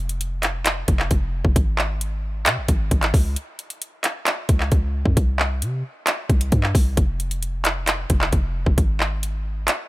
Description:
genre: hip hop, trap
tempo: 133 BPM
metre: 4/4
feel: half-time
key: unclear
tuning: A4 = 440 Hz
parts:
  - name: warm 808-style bass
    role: bass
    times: 0.0-9.7 s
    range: F1 to C3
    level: -23 LUFS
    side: equal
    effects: none
  - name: trap drum kit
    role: drums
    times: 0.1-9.8 s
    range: handclaps, hi-hat, kick drum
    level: -20 LUFS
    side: equal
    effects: none
room: little or no reverb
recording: none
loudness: -19 LUFS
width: side -18 dB against mid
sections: 0.0-9.9 A section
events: break 3.4-4.3; kick muted 9.7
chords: none

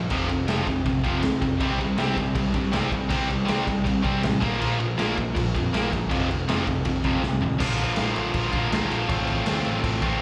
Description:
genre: punk rock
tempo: 160 BPM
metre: 4/4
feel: straight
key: unclear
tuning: A4 = 442 Hz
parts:
  - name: sludgy distorted guitar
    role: riff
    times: 0.0-7.6 s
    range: F2 to C4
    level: -34 LUFS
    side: equal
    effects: none
  - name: tight distorted guitar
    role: riff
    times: 0.0-10.2 s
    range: F2 to F4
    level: -28 LUFS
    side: equal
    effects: distortion, slapback echo
  - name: fuzz picked electric bass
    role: bass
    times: 0.0-10.2 s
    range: F1 to G2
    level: -32 LUFS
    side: equal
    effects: overdrive
  - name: raw garage drum kit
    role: drums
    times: 0.1-10.1 s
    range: crash cymbal, kick drum, snare drum, toms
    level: -30 LUFS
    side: equal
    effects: none
room: small room ambience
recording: live gig heard through the venue's PA, club reverb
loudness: -24 LUFS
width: mono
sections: 0.0-7.6 A section; 7.6-10.2 B section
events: drum fill 7.2-7.6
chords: 0.1 F5; 1.6 C5; 4.4 Bb5; 6.1 F5; 7.6 Bb; 9.1 F/A

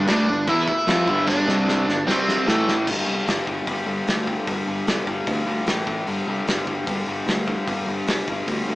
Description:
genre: punk rock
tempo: 150 BPM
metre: 4/4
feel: straight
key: unclear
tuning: A4 = 440 Hz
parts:
  - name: crunchy overdriven guitar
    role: melody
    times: 0.0-2.8 s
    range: A3 to E5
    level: -23 LUFS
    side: equal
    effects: none
  - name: distorted electric guitar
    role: riff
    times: 0.0-8.8 s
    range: G2 to F4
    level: -26 LUFS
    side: left 2 dB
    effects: distortion
  - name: sludgy distorted guitar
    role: riff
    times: 0.0-2.9 s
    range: G2 to F4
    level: -24 LUFS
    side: right 1 dB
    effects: overdrive
  - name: sludgy distorted guitar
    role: riff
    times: 0.0-2.9 s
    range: G2 to F4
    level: -28 LUFS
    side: equal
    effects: none
  - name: modern bright picked electric bass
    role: bass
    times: 0.0-8.8 s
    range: G1 to F2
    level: -30 LUFS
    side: equal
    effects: none
  - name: loose indie drum kit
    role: drums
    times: 0.1-8.6 s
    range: crash cymbal, hi-hat, kick drum, snare drum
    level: -25 LUFS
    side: equal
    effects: none
room: moderate stone room reverb, RT60 1.1 s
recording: rough rehearsal-room recording, warm saturation, small speaker sound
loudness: -20 LUFS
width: side -18 dB against mid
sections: 0.0-2.9 A section; 2.9-8.8 B section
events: drum fill 1.3-2.9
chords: 0.0 G; 1.5 C5; 1.9 G5; 2.1 C5; 2.5 A5; 2.9 G5; 5.7 A5; 6.1 G5

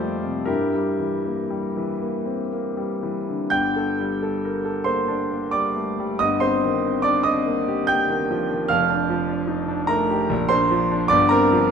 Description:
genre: classical, impressionist solo piano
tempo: 57-76 BPM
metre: 3/4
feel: rubato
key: G minor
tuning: A4 = 440 Hz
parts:
  - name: clear concert grand piano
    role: solo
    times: 0.0-11.7 s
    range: F1 to G6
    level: -20 LUFS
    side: equal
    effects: none
room: wet scoring stage reverb, RT60 1.8 s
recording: none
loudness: -20 LUFS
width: side -6 dB against mid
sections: 0.0-3.5 A section; 3.5-11.7 A section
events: none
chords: 0.5 Gm6; 3.5 Gmadd9; 6.2 Cm7/G; 8.7 F69; 10.3 Bb; 11.1 Gm11

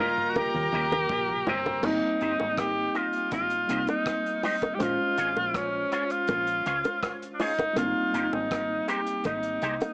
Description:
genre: lovers rock reggae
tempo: 81 BPM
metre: 4/4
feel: straight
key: Ab major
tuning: A4 = 444 Hz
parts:
  - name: bright tenor saxophone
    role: melody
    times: 0.0-9.9 s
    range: C4 to G4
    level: -30 LUFS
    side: equal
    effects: cassette tape, tape echo
  - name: warm studio violin section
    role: second line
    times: 0.0-1.8 s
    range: Bb4 to Bb5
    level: -34 LUFS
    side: equal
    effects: cassette tape, tape echo, plate reverb
  - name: tine electric piano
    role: accompaniment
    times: 0.0-9.9 s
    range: Db3 to C5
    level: -35 LUFS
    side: equal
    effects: overdrive, cassette tape, tape echo
  - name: electric guitar with an envelope filter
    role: stabs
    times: 0.0-9.8 s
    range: Ab3 to Eb5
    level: -37 LUFS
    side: equal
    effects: ensemble chorus, cassette tape, tape echo, plate reverb
  - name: cloth-damped thuddy drum kit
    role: drums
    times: 0.2-9.9 s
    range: crash cymbal, hi-hat, kick drum, rim click, toms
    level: -40 LUFS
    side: equal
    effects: cassette tape, tape echo
  - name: bongos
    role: percussion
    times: 0.4-9.9 s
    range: none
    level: -33 LUFS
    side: equal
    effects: none
  - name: deep dub fingered electric bass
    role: bass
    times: 0.6-9.8 s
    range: G1 to Eb2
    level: -41 LUFS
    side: equal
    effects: none
room: light reverb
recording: home recording on cassette, small speaker sound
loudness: -28 LUFS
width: mono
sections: 0.0-1.8 A section; 1.8-9.9 B section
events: drum fill 0.0-1.8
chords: 0.0 Eb7; 1.8 Abmaj7; 4.8 Bbm7; 7.8 Abmaj7

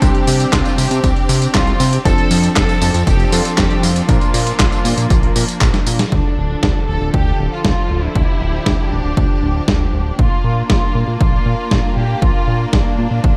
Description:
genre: italo disco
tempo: 118 BPM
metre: 4/4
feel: straight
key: unclear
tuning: A4 = 441 Hz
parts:
  - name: rich symphonic violin section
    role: melody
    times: 0.0-13.4 s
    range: D4 to A4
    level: -26 LUFS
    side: equal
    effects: delay
  - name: clear symphonic string section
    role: sustained chords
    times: 0.0-13.4 s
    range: D3 to A4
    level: -25 LUFS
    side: equal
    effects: low-pass filter
  - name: warm electric grand piano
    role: stabs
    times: 0.0-5.8 s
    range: Bb2 to C5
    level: -26 LUFS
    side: equal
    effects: none
  - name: fat analog bass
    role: bass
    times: 0.0-13.3 s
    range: D1 to C3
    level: -20 LUFS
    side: equal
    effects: none
  - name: dusty soul sampler-style drum kit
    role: drums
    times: 0.0-12.8 s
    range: handclaps, hi-hat, snare drum, tambourine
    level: -22 LUFS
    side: equal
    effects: studio reverb, gated reverb
  - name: electronic kick drum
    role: drums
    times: 0.0-13.3 s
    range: none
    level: -19 LUFS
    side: equal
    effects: studio reverb
room: little or no reverb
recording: none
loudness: -15 LUFS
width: mono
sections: 0.0-6.1 A section; 6.1-13.4 B section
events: drum fill 5.6-6.1; band accent 6.0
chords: 0.0 Csus2; 2.1 F6; 4.1 Bb; 6.1 Dm; 10.2 Bb

